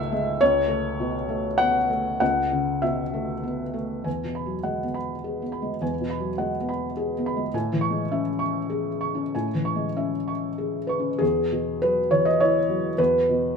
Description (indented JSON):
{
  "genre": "neoclassical minimalist piano",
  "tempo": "93-107 BPM",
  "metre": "3/4",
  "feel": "rubato",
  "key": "E major",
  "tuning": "A4 = 442 Hz",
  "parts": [
    { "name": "felt-muted upright piano", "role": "solo", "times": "0.0-13.6 s", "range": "C#2 to C#6", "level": "-22 LUFS", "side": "left 1 dB", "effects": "none" }
  ],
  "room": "moderate stone room reverb, RT60 1.1 s",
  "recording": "band playing live in one room",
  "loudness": "-22 LUFS",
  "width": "side -5 dB against mid",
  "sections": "0.0-4.1 A section; 4.1-11.2 B section; 11.2-13.6 C section",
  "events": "none",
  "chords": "0.4 Aadd9/C#; 4.1 Eadd9; 7.5 Amaj7; 11.2 Eadd9",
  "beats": "| 0.40 0.98 1.58 | 2.20 2.82 3.44 | 4.06 4.65 5.24 | 5.82 6.39 6.96 | 7.52 8.10 8.70 | 9.33 9.96 10.59 | 11.22 11.81 12.40 | 12.98 13.56"
}